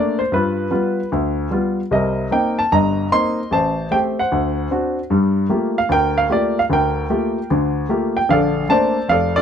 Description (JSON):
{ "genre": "solo jazz", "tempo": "150 BPM", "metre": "4/4", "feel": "swing 66% on 8ths", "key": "G minor", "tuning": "A4 = 437 Hz", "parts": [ { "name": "warm baby grand piano", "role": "solo", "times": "0.0-9.4 s", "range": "F1 to C6", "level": "-16 LUFS", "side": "equal", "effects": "none" } ], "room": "light reverb", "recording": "close, detailed microphones", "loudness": "-16 LUFS", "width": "side -8 dB against mid", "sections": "0.0-8.3 A section; 8.3-9.4 B section", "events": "none", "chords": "0.3 G7; 1.9 Cm7; 3.5 Am7; 4.3 D7; 5.1 Gm9; 8.3 Bbmaj9", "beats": "| 0.32 0.72 1.12 1.52 | 1.92 2.32 2.71 3.11 | 3.51 3.91 4.31 4.71 | 5.11 5.50 5.90 6.30 | 6.70 7.10 7.50 7.89 | 8.29 8.69 9.09" }